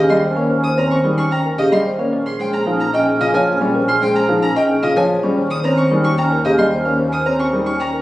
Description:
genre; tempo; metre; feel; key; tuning
classical, minimalist pattern music; 111 BPM; 3/4; straight; Eb mixolydian; A4 = 443 Hz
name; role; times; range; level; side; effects
mellow clarinet; second line; 0.0-8.0 s; Db4; -22 LUFS; right 2 dB; none
dark grand piano; accompaniment; 0.0-7.7 s; Db3 to C4; -20 LUFS; left 1 dB; none
vibraphone with soft mallets; arpeggios; 0.0-8.0 s; Db4 to C5; -20 LUFS; equal; none
warm violin; arpeggios; 0.0-7.9 s; Eb5 to Eb6; -26 LUFS; left 1 dB; none
rich chamber double bass section; bass; 0.0-8.0 s; Bb1 to Eb2; -24 LUFS; equal; none
folk marimba with medium mallets; melody; 0.1-8.0 s; Ab4 to G5; -22 LUFS; equal; none
room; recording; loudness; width
wet stone room reverb, RT60 1.4 s; recorded on a phone in the room, studio reverb; -14 LUFS; side -16 dB against mid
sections
0.0-8.0 A section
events
none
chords
0.0 Eb7; 2.1 Bbm11; 5.4 Eb7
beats
| 0.50 1.04 1.58 | 2.12 2.66 3.21 | 3.75 4.29 4.83 | 5.37 5.91 6.45 | 6.99 7.53

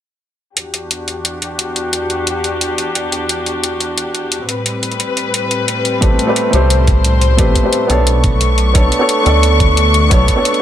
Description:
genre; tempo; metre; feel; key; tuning
liquid drum and bass; 176 BPM; 4/4; straight; E minor; A4 = 440 Hz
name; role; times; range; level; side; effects
dark studio string section; sustained chords; 0.6-10.6 s; E2 to C#6; -18 LUFS; left 2 dB; sidechain pumping, low-pass filter
electronic hi-hat; drums; 0.6-10.6 s; none; -19 LUFS; left 1 dB; none
felt-muted upright piano; accompaniment; 6.0-10.6 s; A3 to D5; -15 LUFS; right 1 dB; ping-pong delay
dark detuned saw bass; bass; 6.0-10.3 s; A1 to D2; -13 LUFS; equal; none
electronic kick drum; drums; 6.0-10.4 s; none; -14 LUFS; equal; none
room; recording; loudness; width
light reverb, small room ambience; none; -12 LUFS; side -10 dB against mid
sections
0.6-10.6 A section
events
filter sweep on string section 0.6-10.6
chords
0.6 Em9; 4.5 Am9; 8.1 Bm9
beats
| 0.57 0.91 1.25 1.59 | 1.93 2.27 2.61 2.95 | 3.29 3.63 3.98 4.32 | 4.66 5.00 5.34 5.68 | 6.02 6.36 6.70 7.04 | 7.38 7.73 8.07 8.41 | 8.75 9.09 9.43 9.77 | 10.11 10.45

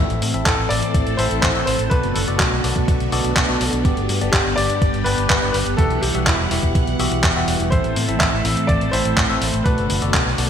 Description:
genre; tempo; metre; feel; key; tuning
italo disco; 124 BPM; 4/4; straight; unclear; A4 = 440 Hz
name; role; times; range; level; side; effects
phased string machine; sustained chords; 0.0-10.5 s; D3 to F#5; -24 LUFS; right 1 dB; ensemble chorus, phaser
bell-like tine electric piano; stabs; 0.0-10.5 s; G2 to E5; -25 LUFS; left 3 dB; phaser, low-pass filter, ping-pong delay
fingered electric bass with an envelope filter; bass; 0.0-10.5 s; E1 to A2; -23 LUFS; equal; none
dusty soul sampler-style drum kit; drums; 0.1-10.5 s; handclaps, hi-hat; -22 LUFS; equal; studio reverb, gated reverb
clear grand piano; melody; 0.5-10.5 s; E4 to E5; -24 LUFS; equal; ping-pong delay
electronic kick drum; drums; 0.5-10.2 s; none; -20 LUFS; equal; studio reverb
room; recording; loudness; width
moderate lush hall reverb, RT60 1.7 s, digital ambience; bright 1980s-style digital production; -16 LUFS; side -8 dB against mid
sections
0.0-10.5 A section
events
filter sweep on tine electric piano 0.0-10.5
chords
0.0 Am; 1.9 Bm7; 3.8 G; 5.8 Emadd9; 7.7 Am; 9.7 Bm7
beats
0.46 0.94 1.43 | 1.91 2.40 2.88 3.37 | 3.85 4.33 4.82 5.30 | 5.78 6.27 6.75 7.24 | 7.72 8.20 8.69 9.17 | 9.65 10.14

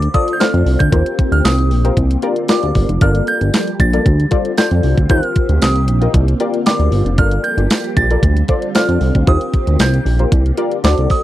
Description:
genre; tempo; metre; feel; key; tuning
early-eighties boogie funk; 115 BPM; 4/4; straight; G minor; A4 = 445 Hz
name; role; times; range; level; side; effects
delicate synth tine bell; melody; 0.0-11.2 s; D6 to A6; -22 LUFS; right 3 dB; chorus, slapback echo
soft string machine; sustained chords; 0.0-11.2 s; D3 to G4; -24 LUFS; equal; phaser, ensemble chorus
chorused synth bass; bass; 0.0-11.1 s; F1 to F2; -14 LUFS; equal; none
clean 12-bit digital drum machine; drums; 0.0-11.2 s; handclaps, hi-hat, kick drum, snare drum; -15 LUFS; equal; overdrive
funky polysynth comp; accompaniment; 0.1-11.2 s; F4 to Eb5; -20 LUFS; left 3 dB; chorus
tambourine; percussion; 0.4-11.0 s; none; -30 LUFS; right 15 dB; none
room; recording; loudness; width
little or no reverb; dry, close 1970s-style studio recording; -12 LUFS; side -14 dB against mid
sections
0.0-11.2 A section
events
none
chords
0.0 Dm7; 0.9 Eb6; 2.0 C9sus4; 3.0 Gm9; 4.1 Dm7; 5.1 Eb6; 6.1 C9sus4; 7.2 Gm9; 8.2 Dm7; 9.3 Eb6; 10.3 C9sus4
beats
0.40 | 0.93 1.45 1.97 2.49 | 3.01 3.53 4.06 4.58 | 5.10 5.62 6.14 6.66 | 7.19 7.71 8.23 8.75 | 9.27 9.79 10.32 10.84

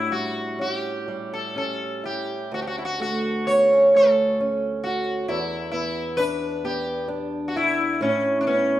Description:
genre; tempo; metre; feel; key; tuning
celtic folk, Celtic slow air; 62-68 BPM; 3/4; rubato; D major; A4 = 439 Hz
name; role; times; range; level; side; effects
sitar; melody; 0.0-8.8 s; C#4 to C#5; -22 LUFS; equal; none
picked old ladder-braced acoustic guitar; accompaniment; 0.0-8.8 s; D2 to F#4; -28 LUFS; right 1 dB; none
room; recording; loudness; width
light reverb; minimal, uncompressed stereo recording; -21 LUFS; side -13 dB against mid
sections
0.0-8.8 A section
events
none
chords
0.0 A7; 2.5 Dmaj7; 5.3 E5; 8.0 Aadd9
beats
0.59 1.54 | 2.51 3.46 4.39 | 5.29 6.18 7.09 | 8.01

